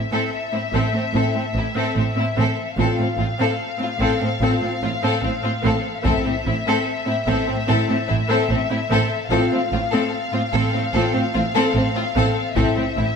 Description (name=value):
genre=cinematic, epic orchestral film score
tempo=73 BPM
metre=4/4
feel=straight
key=A minor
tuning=A4 = 439 Hz
part: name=rich symphonic violin section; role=melody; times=0.0-13.2 s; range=E5 to F5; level=-26 LUFS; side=left 5 dB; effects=none
part: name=rich symphonic violin section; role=second line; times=0.1-13.1 s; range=C4 to A4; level=-25 LUFS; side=left 4 dB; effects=none
part: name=rich symphonic viola section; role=accompaniment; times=0.1-13.0 s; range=C4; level=-25 LUFS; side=right 1 dB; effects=none
part: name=rich symphonic cello section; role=bass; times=0.1-13.1 s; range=A2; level=-25 LUFS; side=right 2 dB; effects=none
part: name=rich symphonic double bass section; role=bass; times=0.7-13.1 s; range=A1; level=-26 LUFS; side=right 3 dB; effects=none
part: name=mellow French horn section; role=sustained chords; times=1.1-12.9 s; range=C4 to F4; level=-27 LUFS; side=left 3 dB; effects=none
part: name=taiko ensemble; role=drums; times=6.1-13.2 s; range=none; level=-27 LUFS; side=equal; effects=none
room=moderate scoring stage reverb, RT60 2.0 s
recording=none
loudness=-18 LUFS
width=side -6 dB against mid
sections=0.0-13.2 A section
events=none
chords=0.0 Am; 2.8 F/A; 6.1 Am; 9.3 F/A; 12.6 Am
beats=0.32 1.14 1.96 | 2.78 3.60 4.42 5.23 | 6.05 6.87 7.68 8.50 | 9.31 10.12 10.95 11.76 | 12.57